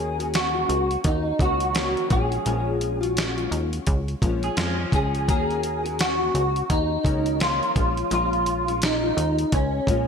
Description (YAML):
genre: indie pop, bedroom pop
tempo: 85 BPM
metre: 4/4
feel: swing 60% on 16ths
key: Eb minor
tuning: A4 = 438 Hz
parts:
  - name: electric guitar through a small old amp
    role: melody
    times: 0.0-10.1 s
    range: Db4 to Ab4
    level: -24 LUFS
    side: equal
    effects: ensemble chorus, ping-pong delay
  - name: nylon-string guitar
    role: accompaniment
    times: 0.0-10.1 s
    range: Bb2 to Gb4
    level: -30 LUFS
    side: left 7 dB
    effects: ensemble chorus, vibrato effect
  - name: plucky analog bass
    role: bass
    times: 0.0-10.1 s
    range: Bb1 to F2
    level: -27 LUFS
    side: equal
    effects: none
  - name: dusty soul sampler-style drum kit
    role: drums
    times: 0.2-10.1 s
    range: hi-hat, kick drum, snare drum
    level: -26 LUFS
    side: equal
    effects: gated reverb
  - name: electric guitar through a small old amp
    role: second line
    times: 4.4-5.3 s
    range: F3 to Ab4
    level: -32 LUFS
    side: right 3 dB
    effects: lush chorus, ping-pong delay
room: moderate plate reverb, RT60 2.3 s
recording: bright 1980s-style digital production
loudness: -21 LUFS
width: side -6 dB against mid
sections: 0.0-10.1 A section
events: none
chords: 0.0 Ebm7; 2.1 Bbm7; 5.3 Ebm7; 7.8 Bbm7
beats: 0.34 1.04 1.75 | 2.46 3.17 3.87 4.58 | 5.29 5.99 6.70 7.40 | 8.11 8.82 9.52